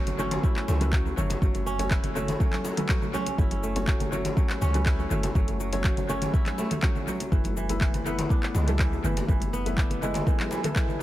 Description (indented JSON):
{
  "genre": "afro house",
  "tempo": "122 BPM",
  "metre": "4/4",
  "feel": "straight",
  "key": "F# minor",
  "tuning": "A4 = 440 Hz",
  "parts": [
    { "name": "kora", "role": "arpeggios", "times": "0.0-11.0 s", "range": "E3 to E4", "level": "-33 LUFS", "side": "right 2 dB", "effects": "sidechain pumping, tape echo" },
    { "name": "felt-muted upright piano", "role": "stabs", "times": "0.0-11.0 s", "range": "A3 to C#5", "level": "-33 LUFS", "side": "left 2 dB", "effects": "sidechain pumping, analog delay" },
    { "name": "warm 808-style bass", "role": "bass", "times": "0.0-10.2 s", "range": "F#1 to C#2", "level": "-30 LUFS", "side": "equal", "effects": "sidechain pumping" },
    { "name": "afro-pop drum kit", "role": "drums", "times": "0.1-11.0 s", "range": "handclaps, hi-hat, shaker, toms", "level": "-33 LUFS", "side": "left 1 dB", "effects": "analog delay" },
    { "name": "congas", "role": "percussion", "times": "0.1-11.0 s", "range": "none", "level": "-36 LUFS", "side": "right 2 dB", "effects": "analog delay" },
    { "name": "djembe", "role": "percussion", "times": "0.1-11.0 s", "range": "none", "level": "-38 LUFS", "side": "left 2 dB", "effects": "none" },
    { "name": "electronic kick drum", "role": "drums", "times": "0.4-10.9 s", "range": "none", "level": "-25 LUFS", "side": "equal", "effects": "none" }
  ],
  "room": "small room ambience",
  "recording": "echo-heavy mix",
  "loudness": "-23 LUFS",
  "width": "side -14 dB against mid",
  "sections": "0.0-11.0 A section",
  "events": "none",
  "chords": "0.0 F#m; 7.3 Esus4/F#",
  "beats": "0.43 0.93 | 1.42 1.91 2.40 2.89 | 3.39 3.88 4.37 4.86 | 5.35 5.84 6.34 6.83 | 7.32 7.81 8.30 8.80 | 9.29 9.78 10.27 10.76"
}